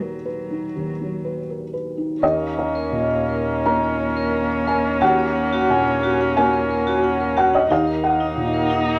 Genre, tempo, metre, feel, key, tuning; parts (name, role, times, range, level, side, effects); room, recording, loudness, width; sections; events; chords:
neoclassical piano and strings; 80-90 BPM; 4/4; rubato; A4 = 445 Hz
dark cello; second line; 0.0-9.0 s; F#3 to Bb3; -32 LUFS; equal
felt-muted upright piano; accompaniment; 0.0-9.0 s; D#2 to Bb5; -23 LUFS; equal
warm viola; accompaniment; 2.2-9.0 s; Db4 to Eb4; -26 LUFS; equal
vibraphone with hard mallets; arpeggios; 2.2-9.0 s; Eb4 to Bb5; -28 LUFS; equal
pure sine sub bass; bass; 2.2-9.0 s; Eb2; -37 LUFS; equal
moderate studio reverb, RT60 0.9 s; -21 LUFS; mono
0.0-2.2 A section; 2.2-9.0 A section
0.0 B/D#; 2.2 Bbm/Eb; 5.0 Gb/Eb; 7.7 Ebm